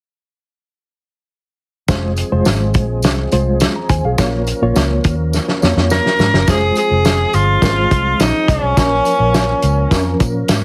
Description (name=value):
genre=uptempo 1960s-style soul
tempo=105 BPM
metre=4/4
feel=straight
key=F minor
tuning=A4 = 445 Hz
part: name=reed electric piano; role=accompaniment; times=1.9-10.5 s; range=F3 to Bb5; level=-22 LUFS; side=equal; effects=fast tremolo
part: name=percussive tonewheel organ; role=sustained chords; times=1.9-10.6 s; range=F3 to Bb4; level=-28 LUFS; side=equal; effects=slow rotary speaker, overdrive, chorus vibrato
part: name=vintage muted fingered electric bass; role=bass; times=1.9-10.6 s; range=F1 to Bb2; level=-20 LUFS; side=equal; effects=none
part: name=warm soul drum kit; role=drums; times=1.9-10.6 s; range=hi-hat, kick drum, snare drum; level=-19 LUFS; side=equal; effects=none
part: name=tambourine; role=percussion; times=1.9-10.6 s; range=none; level=-33 LUFS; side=equal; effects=none
part: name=bright tenor saxophone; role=melody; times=5.9-10.2 s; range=Db4 to Bb4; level=-18 LUFS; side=equal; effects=slapback echo
room=light reverb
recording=heavily compressed radio sound, multiband compression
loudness=-15 LUFS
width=mono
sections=1.9-6.5 A section; 6.5-10.6 B section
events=drum fill 5.3-6.5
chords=1.9 Fm; 4.2 Bbm; 6.5 Fm; 8.8 Bbm